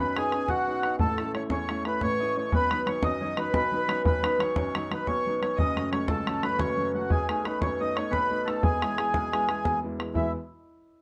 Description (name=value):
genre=celtic folk, Celtic slip jig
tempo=118 BPM (dotted quarters)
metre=9/8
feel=straight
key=unclear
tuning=A4 = 442 Hz
part: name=mellow accordion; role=melody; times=0.0-10.3 s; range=E4 to D#5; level=-31 LUFS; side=equal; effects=none
part: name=concert harp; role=second line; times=0.0-10.3 s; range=E4 to D#5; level=-35 LUFS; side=equal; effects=none
part: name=clear upright piano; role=accompaniment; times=0.0-10.3 s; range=E1 to E4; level=-34 LUFS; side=equal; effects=none
part: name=bodhran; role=percussion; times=0.2-10.3 s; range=none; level=-31 LUFS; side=equal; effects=none
room=moderate small room reverb, RT60 0.5 s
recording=none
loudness=-27 LUFS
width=mono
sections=0.0-10.2 A section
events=none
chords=0.0 Badd9; 1.0 A; 2.5 B; 5.6 F#m; 7.1 B7; 8.6 E